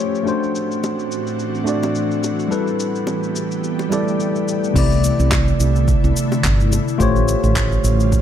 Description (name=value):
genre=sunset chillout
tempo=107 BPM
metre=4/4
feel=swing 56% on 16ths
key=C lydian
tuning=A4 = 440 Hz
part: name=mellow tine electric piano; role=accompaniment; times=0.0-8.2 s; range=C3 to D5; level=-20 LUFS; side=moving between left 6 dB and right 6 dB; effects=auto-pan, ping-pong delay
part: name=ethereal airy pad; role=sustained chords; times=0.0-8.2 s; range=A2 to G4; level=-24 LUFS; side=equal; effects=ensemble chorus, built-in reverb
part: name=deep house drum kit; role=drums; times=0.2-8.2 s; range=crash cymbal, handclaps, shaker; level=-27 LUFS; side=left 1 dB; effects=low-pass filter on cymbals, low-pass filter on perc, low-pass filter on snare
part: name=bongos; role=percussion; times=0.8-6.8 s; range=none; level=-29 LUFS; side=left 1 dB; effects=none
part: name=woody fretless electric bass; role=bass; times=4.8-8.2 s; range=G1 to C2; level=-17 LUFS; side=right 1 dB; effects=none
part: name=electronic kick drum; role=drums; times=4.8-8.2 s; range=none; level=-20 LUFS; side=right 1 dB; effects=none
room=light reverb, digital ambience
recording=none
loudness=-16 LUFS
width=side -10 dB against mid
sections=0.0-4.8 A section; 4.8-8.2 B section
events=none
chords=0.3 D9/A; 2.5 G69; 4.8 C69; 7.0 A7alt